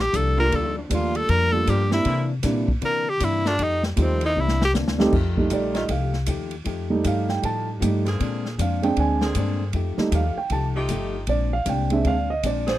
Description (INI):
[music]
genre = jazz, big band swing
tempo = 156 BPM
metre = 4/4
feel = swing 64% on 8ths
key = F mixolydian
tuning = A4 = 440 Hz
[part]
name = bright tenor saxophone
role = melody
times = 0.0-4.7 s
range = G3 to Bb4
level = -23 LUFS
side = equal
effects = none
[part]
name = upright bass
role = bass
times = 0.0-12.8 s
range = G1 to D3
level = -24 LUFS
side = equal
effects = none
[part]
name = vintage hollow-body jazz guitar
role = accompaniment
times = 0.1-12.7 s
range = G2 to G4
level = -30 LUFS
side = left 4 dB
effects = none
[part]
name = swinging big-band drum kit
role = drums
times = 0.1-12.7 s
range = crash cymbal, hi-hat, kick drum, ride cymbal, snare drum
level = -30 LUFS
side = equal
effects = none
[part]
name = warm grand piano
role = accompaniment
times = 0.4-12.8 s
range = G3 to A5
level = -24 LUFS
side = right 4 dB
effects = none
[part]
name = clear saxophone section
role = sustained chords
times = 0.4-12.8 s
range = D3 to Ab4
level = -31 LUFS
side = equal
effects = none
[sound]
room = little or no reverb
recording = dry, close 1970s-style studio recording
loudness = -20 LUFS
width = side -14 dB against mid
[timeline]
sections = 0.0-5.1 A section; 5.1-12.8 A section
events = tenor saxophone solo 0.0-5.1; drum fill 4.4-5.1; grand piano solo 5.1-12.8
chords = 0.0 Gm7; 3.6 F9; 4.4 C9; 5.1 F9; 8.2 Bb9; 9.7 F9; 11.3 Bb9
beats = 0.13 | 0.52 0.90 1.29 1.67 | 2.05 2.44 2.82 3.21 | 3.59 3.98 4.36 4.74 | 5.13 5.51 5.90 6.28 | 6.66 7.05 7.43 7.82 | 8.20 8.59 8.97 9.36 | 9.74 10.12 10.51 10.89 | 11.28 11.66 12.04 12.43